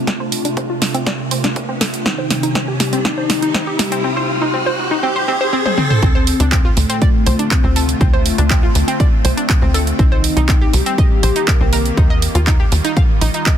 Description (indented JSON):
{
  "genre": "melodic techno",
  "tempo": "121 BPM",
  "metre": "4/4",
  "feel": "straight",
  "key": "D phrygian",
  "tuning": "A4 = 440 Hz",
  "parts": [
    { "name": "soft octave-layered synth lead", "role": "melody", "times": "0.0-12.1 s", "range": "A3 to Bb4", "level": "-23 LUFS", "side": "left 2 dB", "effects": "chorus, phaser, sidechain pumping, digital delay" },
    { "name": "evolving wavetable pad", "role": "sustained chords", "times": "0.0-13.6 s", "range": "C3 to G4", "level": "-24 LUFS", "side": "equal", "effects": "ensemble chorus, built-in reverb, sidechain pumping" },
    { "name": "riser", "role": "sound effects", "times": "0.3-6.0 s", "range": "none", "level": "-24 LUFS", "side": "right 1 dB", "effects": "none" },
    { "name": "analog pluck", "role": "arpeggios", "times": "0.1-13.5 s", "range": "C4 to F5", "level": "-22 LUFS", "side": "equal", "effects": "chorus, cassette tape, sidechain pumping, digital delay" },
    { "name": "electronic kick drum", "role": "drums", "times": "0.1-13.6 s", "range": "none", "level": "-14 LUFS", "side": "equal", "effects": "high-pass filter on kick, high-pass filter on room" },
    { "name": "techno drum kit", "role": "drums", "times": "0.1-13.6 s", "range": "handclaps, hi-hat, snare drum, toms", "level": "-21 LUFS", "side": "right 1 dB", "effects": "sidechain pumping on hats, sidechain pumping on toms" },
    { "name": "tight sequencer bass", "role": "bass", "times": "6.0-13.3 s", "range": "Bb1 to Eb2", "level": "-16 LUFS", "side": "equal", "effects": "sidechain pumping" }
  ],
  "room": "light reverb, digital ambience",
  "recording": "dense, heavily limited modern master",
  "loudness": "-13 LUFS",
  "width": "side -10 dB against mid",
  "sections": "0.0-6.0 A section; 6.0-13.6 B section",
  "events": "build-up 0.0-6.0; drum fill 0.0-4.0, 5.7-6.0; filter sweep on synth arpeggio sound 0.0-6.0; filter sweep on soft synth lead 0.0-6.0; riser 0.3-6.0; drop 6.0-13.6",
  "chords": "0.0 Dm7; 2.1 Cm7; 4.0 N.C.; 6.0 Dm7; 10.0 Cm7; 12.0 Ebadd9"
}